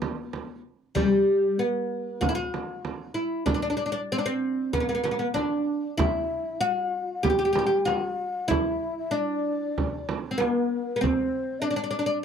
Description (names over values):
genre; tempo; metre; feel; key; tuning
Arabic maqam ensemble; 95 BPM; 4/4; straight; unclear; A4 = 440 Hz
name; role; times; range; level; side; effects
oud; melody; 0.0-12.2 s; G3 to G4; -25 LUFS; equal; none
frame drum; percussion; 0.0-11.2 s; none; -29 LUFS; right 4 dB; none
breathy mellow ney; second line; 6.0-12.2 s; Bb4+46c to G5; -32 LUFS; left 4 dB; none
room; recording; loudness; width
light reverb; dry, close 1970s-style studio recording; -24 LUFS; side -7 dB against mid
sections
0.0-12.2 A section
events
none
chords
none